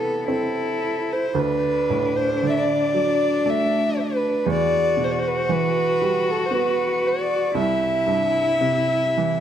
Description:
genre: celtic folk, Celtic slow air.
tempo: 54-59 BPM.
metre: 3/4.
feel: rubato.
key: D mixolydian.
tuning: A4 = 438 Hz.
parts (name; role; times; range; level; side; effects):
dark fiddle; melody; 0.0-9.4 s; A4 to E5; -22 LUFS; equal; none.
warm cello; second line; 0.0-9.4 s; B3 to F#4; -26 LUFS; left 3 dB; none.
felt-muted upright piano; accompaniment; 0.0-9.4 s; C2 to E4; -25 LUFS; right 4 dB; none.
room: moderate recital hall reverb, RT60 1.6 s.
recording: none.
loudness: -19 LUFS.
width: side -9 dB against mid.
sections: 0.0-9.4 A section.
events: none.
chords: 0.0 Am; 1.4 D; 4.5 Em; 7.5 C.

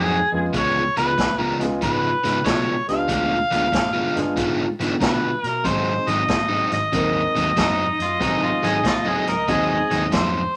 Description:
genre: electric blues shuffle.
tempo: 94 BPM.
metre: 4/4.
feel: swing 67% on 8ths.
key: unclear.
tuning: A4 = 440 Hz.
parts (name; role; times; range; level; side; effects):
mellow harmonica; melody; 0.0-10.6 s; Gb4 to F5; -25 LUFS; equal; overdrive.
electric guitar at the edge of break-up; second line; 0.0-0.4, 7.6-10.0 s; Eb4 to Bb4; -26 LUFS; equal; none.
crunchy overdriven guitar; riff; 0.0-10.4 s; Ab2 to F4; -26 LUFS; equal; none.
vintage muted fingered electric bass; bass; 0.0-10.4 s; Ab1 to Cb3; -32 LUFS; equal; none.
dark concert grand piano; accompaniment; 0.3-9.9 s; Ab3 to Bb4; -29 LUFS; equal; none.
swinging big-band drum kit; drums; 0.5-10.3 s; hi-hat, kick drum, snare drum; -28 LUFS; equal; none.
room: moderate studio reverb, RT60 0.6 s.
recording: none.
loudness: -21 LUFS.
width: mono.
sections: 0.0-10.6 A section.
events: none.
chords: 0.0 Ab7; 0.5 Db7; 3.1 Ddim7; 5.6 Ab7.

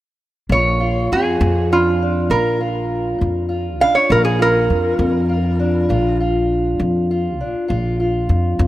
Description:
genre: acoustic country blues, solo or duo.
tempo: 67 BPM (dotted quarters).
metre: 12/8.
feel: straight.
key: Bb major.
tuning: A4 = 440 Hz.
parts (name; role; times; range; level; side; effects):
lap resonator guitar; melody; 0.5-6.2 s; F4 to F5; -18 LUFS; right 2 dB; none.
fingerpicked steel-string acoustic guitar; accompaniment; 0.5-8.7 s; Bb2 to F4; -20 LUFS; equal; none.
upright bass; bass; 0.5-8.7 s; Bb1 to F2; -19 LUFS; equal; none.
room: moderate lush hall reverb, RT60 2.8 s.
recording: rough home demo mix.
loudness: -15 LUFS.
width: side -15 dB against mid.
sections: 0.5-8.7 A section.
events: none.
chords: 0.5 Bb.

